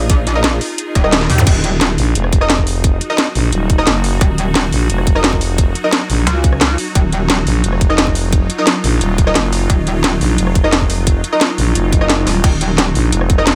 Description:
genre	dark technical drum and bass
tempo	175 BPM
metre	4/4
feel	straight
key	Eb minor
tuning	A4 = 436 Hz
part	swarming drone	sustained chords	0.0-13.6 s	Gb3 to Ab4	-25 LUFS	equal	built-in reverb, sidechain pumping
part	metallic wobble bass	bass	0.0-2.0, 4.2-7.5, 9.7-10.2, 12.4-12.9 s	Eb1 to Eb2	-19 LUFS	equal	chorus
part	drum and bass drum kit	drums	0.1-13.5 s	crash cymbal, hi-hat, rim click, snare drum, toms	-19 LUFS	equal	none
part	electronic kick drum	drums	0.1-13.4 s	none	-15 LUFS	equal	none
part	orchestra-hit-like synth stab	stabs	0.4-13.5 s	Eb4 to Eb5	-24 LUFS	equal	built-in reverb, dub echo
part	zap and swell	sound effects	1.4-1.5, 11.9-12.4 s	none	-28 LUFS	equal	none
part	growling FM bass	bass	2.0-13.6 s	Eb1 to Bb1	-18 LUFS	equal	none
room	digital ambience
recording	none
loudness	-14 LUFS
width	mono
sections	0.0-1.5 A section; 1.5-13.6 A section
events	drop 0.0-1.5, 1.5-13.6; band accent 1.1; drum fill 1.2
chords	0.0 Ebsus2; 1.5 Ebmadd9

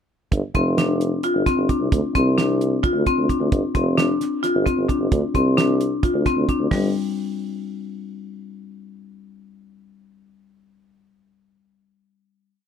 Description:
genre	progressive instrumental, band music in an uneven meter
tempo	263 BPM (eighths)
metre	7/8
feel	straight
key	unclear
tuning	A4 = 441 Hz
part	warm tuba	bass	0.3-6.9 s	F1 to D2	-22 LUFS	right 1 dB	none
part	damped 70s drum kit	drums	0.3-6.8 s	hi-hat, kick drum, snare drum	-22 LUFS	right 3 dB	none
part	marimba with hard mallets	arpeggios	0.6-6.9 s	G3 to F4	-22 LUFS	left 3 dB	none
room	little or no reverb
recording	none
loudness	-18 LUFS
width	side -8 dB against mid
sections	0.3-6.7 groove; 6.7-8.3 final chord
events	none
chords	0.3 G5; 1.9 D7(no3); 3.5 G5; 5.1 D7(no3); 6.7 N.C.

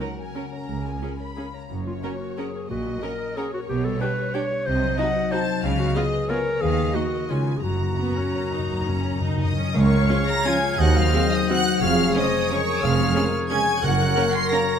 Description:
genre	classical, orchestral ballroom waltz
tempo	162-198 BPM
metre	3/4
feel	rubato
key	F# major, Db major from 9.8 s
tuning	A4 = 440 Hz
part	rich studio violin section	melody	0.0-14.8 s	D#5 to C7	-29 LUFS	left 2 dB	none
part	mellow clarinet	second line	0.0-14.8 s	C#4 to Eb5	-28 LUFS	equal	none
part	rich studio violin section	second line	0.0-14.8 s	A#4 to C6	-32 LUFS	left 2 dB	none
part	rich studio viola section	accompaniment	0.0-14.6 s	A#3 to A#4	-32 LUFS	right 2 dB	none
part	concert harp	arpeggios	0.0-14.8 s	F2 to G#5	-29 LUFS	left 11 dB	none
part	timpani	percussion	0.0-0.1, 7.6-10.2, 13.8-14.3 s	F#2 to C#3	-29 LUFS	left 1 dB	none
part	rich studio cello section	bass	0.7-14.1 s	C#2 to D#3	-28 LUFS	right 3 dB	none
part	rich studio double bass section	bass	0.7-14.1 s	F1 to D#2	-27 LUFS	right 3 dB	none
part	mellow hollow small flute group	second line	9.4-14.8 s	Db5 to C6	-30 LUFS	equal	none
part	bright oboe	second line	9.7-14.8 s	Db5 to F5	-30 LUFS	right 3 dB	none
part	mellow French horn section	sustained chords	9.7-14.8 s	F4 to C5	-28 LUFS	left 3 dB	none
part	warm trombone section	sustained chords	10.1-14.6 s	Db3 to Db4	-33 LUFS	right 5 dB	none
room	moderate scoring stage reverb, RT60 1.9 s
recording	none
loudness	-20 LUFS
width	side -8 dB against mid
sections	0.0-9.8 A section; 9.8-14.8 B section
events	timpani fill 7.6-9.8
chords	0.0 F#/C#; 0.7 C#; 1.7 F#; 2.7 F#/A#; 3.7 G/B; 4.7 Cdim7; 5.6 C#7; 6.6 D#m; 7.3 C#; 7.6 F#; 9.8 Db; 10.8 Cdim/Eb; 11.8 Db/F; 13.8 Gb

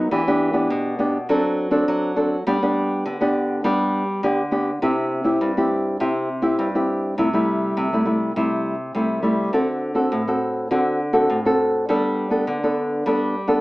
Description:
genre	samba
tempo	102 BPM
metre	4/4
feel	straight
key	C major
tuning	A4 = 440 Hz
part	nylon-string guitar	solo	0.0-13.6 s	G2 to A4	-19 LUFS	equal	none
room	light reverb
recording	small speaker sound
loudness	-19 LUFS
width	side -20 dB against mid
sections	0.0-4.8 A section; 4.8-13.6 B section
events	none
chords	0.1 Em7; 1.3 D7/F#; 2.5 G; 4.8 C; 7.2 Am7/C; 9.5 D7; 11.9 Gadd9

